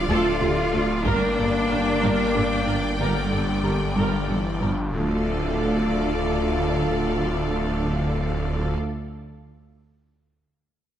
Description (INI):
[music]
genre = cinematic, hybrid orchestral and electronic film score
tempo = 62 BPM (dotted quarters)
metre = 6/8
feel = straight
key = D minor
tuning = A4 = 440 Hz
[part]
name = rich symphonic violin section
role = melody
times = 0.0-8.7 s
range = F5 to G5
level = -34 LUFS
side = left 3 dB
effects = none
[part]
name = clear symphonic violin section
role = second line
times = 0.0-8.7 s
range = D5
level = -33 LUFS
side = left 4 dB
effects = none
[part]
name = dark French horn section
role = sustained chords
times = 0.0-8.8 s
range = D3 to F4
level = -28 LUFS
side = left 3 dB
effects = none
[part]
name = rich symphonic cello section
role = bass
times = 0.0-8.7 s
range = D3 to F4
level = -28 LUFS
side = right 2 dB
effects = none
[part]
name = snarling distorted saw bass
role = bass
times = 0.0-8.7 s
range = D1 to G1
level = -29 LUFS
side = equal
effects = distortion
[part]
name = rich symphonic viola section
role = accompaniment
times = 0.1-8.8 s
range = G4 to Bb4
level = -32 LUFS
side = right 1 dB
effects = none
[part]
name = harp-like synth pluck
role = arpeggios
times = 0.1-4.8 s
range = D3 to G4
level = -31 LUFS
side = equal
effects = chorus, digital delay
[part]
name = mellow tuba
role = bass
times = 0.1-8.8 s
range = G1 to D2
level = -30 LUFS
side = right 3 dB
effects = none
[part]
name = rich studio double bass section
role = bass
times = 0.1-8.8 s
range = D2 to G2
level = -29 LUFS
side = right 2 dB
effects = none
[part]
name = taiko ensemble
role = drums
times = 1.1-2.3 s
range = none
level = -34 LUFS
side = equal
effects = none
[sound]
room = moderate scoring stage reverb, RT60 1.7 s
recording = none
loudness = -21 LUFS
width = side -10 dB against mid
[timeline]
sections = 0.0-4.9 A section; 4.9-8.8 B section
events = none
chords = 0.0 Dm; 1.1 Gm; 4.9 Dm